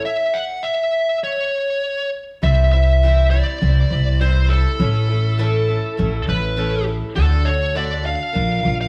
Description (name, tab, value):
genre	folk rock and heartland rock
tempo	101 BPM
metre	4/4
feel	straight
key	unclear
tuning	A4 = 440 Hz
part	picked old ladder-braced acoustic guitar	accompaniment	0.0-8.9 s	A2 to C5	-29 LUFS	equal	none
part	smooth overdriven lead guitar	melody	0.1-8.9 s	A4 to F#5	-24 LUFS	equal	slapback echo
part	upright bass	bass	2.4-8.9 s	A1 to D2	-19 LUFS	equal	none
room	moderate large studio reverb, RT60 1.4 s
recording	none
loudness	-19 LUFS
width	mono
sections	0.0-2.4 A section; 2.4-8.9 B section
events	stop 0.1-2.4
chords	0.0 A (rootless); 2.4 C; 4.8 A; 7.2 D; 8.4 Bb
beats	| 0.05 0.65 1.24 1.83 | 2.43 3.02 3.61 4.21 | 4.80 5.39 5.99 6.58 | 7.17 7.77 8.36